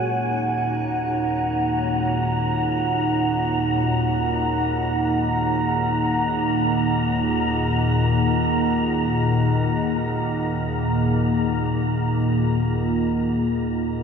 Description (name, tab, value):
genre	dark ambient drone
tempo	free time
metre	none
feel	none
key	unclear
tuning	A4 = 440 Hz
part	dark analog pad	sustained chords	0.0-14.0 s	Eb4 to Gb5	-26 LUFS	right 2 dB	chorus, shimmer reverb
part	organ-like drone	drone	0.0-14.0 s	Eb2 to Bb2	-22 LUFS	left 1 dB	ensemble chorus, built-in reverb
part	wind-like tuned noise texture	texture	0.0-14.0 s	Ab5 to Bb5	-28 LUFS	equal	built-in reverb, shimmer reverb
room	wet huge ambient reverb, RT60 8.1 s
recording	none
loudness	-19 LUFS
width	side -6 dB against mid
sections	0.1-14.0 A section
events	fade-out on analog synth pad 0.1-14.0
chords	0.1 Ebm